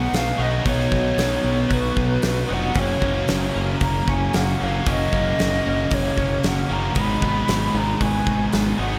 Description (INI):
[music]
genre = rock, shoegaze and dream pop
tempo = 114 BPM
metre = 4/4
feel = straight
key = B major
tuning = A4 = 440 Hz
[part]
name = breathy mellow silver concert flute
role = melody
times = 0.0-9.0 s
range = B4 to B5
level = -28 LUFS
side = equal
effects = slapback echo
[part]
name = twelve-string electric guitar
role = arpeggios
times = 0.0-9.0 s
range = D#3 to F#4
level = -36 LUFS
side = equal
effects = none
[part]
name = biting overdriven guitar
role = riff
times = 0.0-9.0 s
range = F#2 to G#4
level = -30 LUFS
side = equal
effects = reverse reverb
[part]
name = thick fuzz guitar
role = riff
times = 0.0-9.0 s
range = F#2 to B3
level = -29 LUFS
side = equal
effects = distortion, ensemble chorus
[part]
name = tight distorted guitar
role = riff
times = 0.0-9.0 s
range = F#2 to D#4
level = -32 LUFS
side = equal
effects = distortion
[part]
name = growling fingered electric bass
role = bass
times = 0.0-9.0 s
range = E#1 to B1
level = -28 LUFS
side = equal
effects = overdrive
[part]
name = huge arena drum kit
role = drums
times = 0.1-8.7 s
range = hi-hat, kick drum, snare drum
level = -28 LUFS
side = equal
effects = none
[sound]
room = moderate huge ambient reverb, RT60 4.6 s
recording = none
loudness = -21 LUFS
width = mono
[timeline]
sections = 0.0-9.0 A section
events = none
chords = 0.0 B; 2.8 F#; 7.0 G#m7